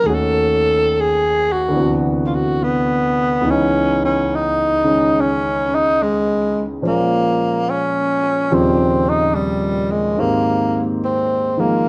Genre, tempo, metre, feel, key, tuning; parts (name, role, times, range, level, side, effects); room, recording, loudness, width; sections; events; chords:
jazz ballad; 71 BPM; 4/4; swing 66% on 8ths; A4 = 441 Hz
growling tenor saxophone; melody; 0.0-11.9 s; G3 to A4; -19 LUFS; equal
warm grand piano; accompaniment; 0.0-11.9 s; Db2 to C5; -22 LUFS; equal
moderate large studio reverb, RT60 1.2 s; -17 LUFS; mono
0.0-11.9 A section
0.1 Ebm7b5; 1.7 D13; 3.4 Dbm9; 6.8 Bbm9; 8.5 Eb13; 10.2 Abmaj9